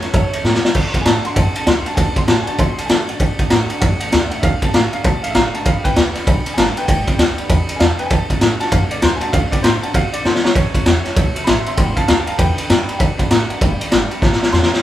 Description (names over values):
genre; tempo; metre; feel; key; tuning
rockabilly; 196 BPM; 4/4; swing 62% on 8ths; unclear; A4 = 440 Hz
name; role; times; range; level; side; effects
bright upright piano; melody; 0.0-14.7 s; B4 to C6; -24 LUFS; right 1 dB; none
honky-tonk upright piano; accompaniment; 0.0-14.8 s; C#5 to C6; -31 LUFS; right 2 dB; none
picked steel-string acoustic guitar; accompaniment; 0.0-14.8 s; G2 to G4; -30 LUFS; left 1 dB; none
upright bass; bass; 0.0-14.7 s; G1 to D3; -22 LUFS; equal; none
raw garage drum kit; drums; 0.0-14.8 s; crash cymbal, kick drum, ride cymbal, snare drum; -15 LUFS; equal; none
room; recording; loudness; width
light reverb; band playing live in one room; -14 LUFS; side -13 dB against mid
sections
0.7-14.8 A section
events
honky-tonk piano fill 0.1-0.7; drum fill 0.4-0.7, 10.3-10.6, 14.2-14.8; upright piano solo 0.7-14.8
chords
0.0 A; 0.7 D; 5.7 G; 8.1 D; 10.6 A; 11.8 G; 13.0 D; 13.6 G; 14.2 A